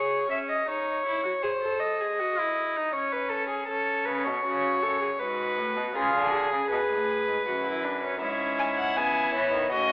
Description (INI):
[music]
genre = classical, baroque-style fugue for string quartet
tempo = 80 BPM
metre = 3/4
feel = straight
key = unclear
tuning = A4 = 440 Hz
[part]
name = dark violin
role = second line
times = 0.0-9.9 s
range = E4 to E5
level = -27 LUFS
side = left 1 dB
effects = none
[part]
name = warm viola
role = accompaniment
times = 0.0-9.9 s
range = A3 to A4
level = -30 LUFS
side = equal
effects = none
[part]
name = rich cello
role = bass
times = 4.1-9.9 s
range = F#2 to E3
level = -32 LUFS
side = right 1 dB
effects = none
[part]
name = rich violin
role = melody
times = 8.6-9.9 s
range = C#5 to G#5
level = -26 LUFS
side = left 1 dB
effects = none
[sound]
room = moderate concert hall reverb, RT60 2.1 s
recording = telephone sound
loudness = -24 LUFS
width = side -24 dB against mid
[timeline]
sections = 0.0-9.9 A section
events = none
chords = 0.0 C#5; 0.7 D#7(no3); 1.4 G#7; 2.9 C#5; 3.7 F#m; 5.2 G#m7; 6.0 C#7; 7.5 F#5; 8.2 C#m/G#